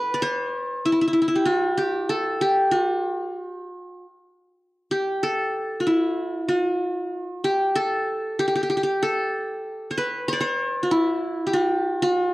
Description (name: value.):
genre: arabic.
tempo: 95 BPM.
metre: 4/4.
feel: straight.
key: unclear.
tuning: A4 = 439 Hz.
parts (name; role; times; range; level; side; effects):
qanun; solo; 0.0-12.3 s; E4 to D5; -21 LUFS; equal; cassette tape.
room: wet spring reverb, RT60 1.6 s, small room ambience.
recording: home recording on cassette.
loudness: -21 LUFS.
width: side -18 dB against mid.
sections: 0.0-12.3 A section.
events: none.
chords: none.